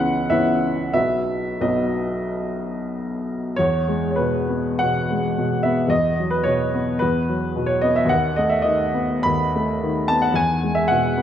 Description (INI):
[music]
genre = classical, romantic character piece for solo piano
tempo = 89-117 BPM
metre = 4/4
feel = rubato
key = E major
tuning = A4 = 439 Hz
[part]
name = warm upright piano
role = solo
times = 0.0-11.2 s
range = B1 to B5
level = -18 LUFS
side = equal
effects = none
[sound]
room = moderate scoring stage reverb, RT60 1.7 s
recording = none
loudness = -19 LUFS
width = side -10 dB against mid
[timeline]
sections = 0.0-3.6 A section; 3.6-11.2 B section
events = none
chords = 0.0 C#m7; 1.0 B; 3.6 E; 5.9 B5/E; 8.1 B7/D#; 10.4 E